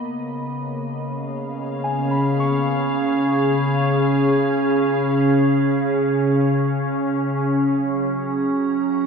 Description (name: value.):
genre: ambient.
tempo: free time.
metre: none.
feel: none.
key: unclear.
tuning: A4 = 439 Hz.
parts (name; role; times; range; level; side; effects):
evolving wavetable pad; sustained chords; 0.0-9.1 s; C#3 to A#5; -18 LUFS; equal; chorus, built-in reverb.
muted felt-like synth keys; arpeggios; 0.0-7.6 s; G#5 to C#6; -31 LUFS; left 1 dB; chorus, diffuse ambient delay.
room: wet huge ambient reverb, RT60 7.5 s.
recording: none.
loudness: -18 LUFS.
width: side -6 dB against mid.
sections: 0.0-9.1 A section.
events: none.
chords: 0.0 C#; 7.5 F#.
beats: free time.